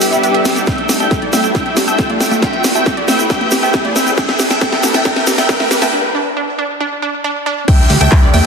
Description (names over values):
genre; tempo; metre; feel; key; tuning
uplifting trance; 137 BPM; 4/4; straight; E minor; A4 = 436 Hz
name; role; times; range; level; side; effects
big supersaw lead; melody; 0.0-8.5 s; G4 to G5; -17 LUFS; equal; phaser, sidechain pumping, low-pass filter, digital delay
supersaw pad; sustained chords; 0.0-8.5 s; D3 to B4; -22 LUFS; equal; phaser, sidechain pumping
wide unison pluck; arpeggios; 0.0-8.3 s; D4 to B5; -21 LUFS; right 3 dB; sidechain pumping, digital delay
house drum kit; drums; 0.0-8.4 s; congas, crash cymbal, handclaps, hi-hat, snare drum; -17 LUFS; equal; overdrive, sidechain pumping on hats, sidechain pumping on perc, sidechain pumping on cymbals
tube shaker; percussion; 0.0-5.9 s; none; -23 LUFS; right 1 dB; none
riser and downlifter; sound effects; 0.0-8.5 s; none; -21 LUFS; left 1 dB; none
electronic kick drum; drums; 0.7-8.2 s; none; -15 LUFS; equal; overdrive
analog pluck; second line; 7.7-8.5 s; G5; -22 LUFS; equal; chorus, sidechain pumping, digital delay
plucky analog bass; bass; 7.8-8.4 s; D2 to E2; -13 LUFS; equal; tube saturation, sidechain pumping
room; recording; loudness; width
moderate lush hall reverb, RT60 1.6 s, digital ambience; dense, heavily limited modern master, high-pass filter; -11 LUFS; side -5 dB against mid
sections
0.0-7.7 A section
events
build-up 0.0-7.7; drum fill 0.0-5.9; riser 0.0-5.9; filter sweep on supersaw synth 0.0-7.7; filter sweep on synth pluck 0.0-7.7; break 5.9-7.7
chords
0.0 Em; 0.7 Dsus4; 2.4 Amadd9; 4.2 Em; 7.7 Dsus4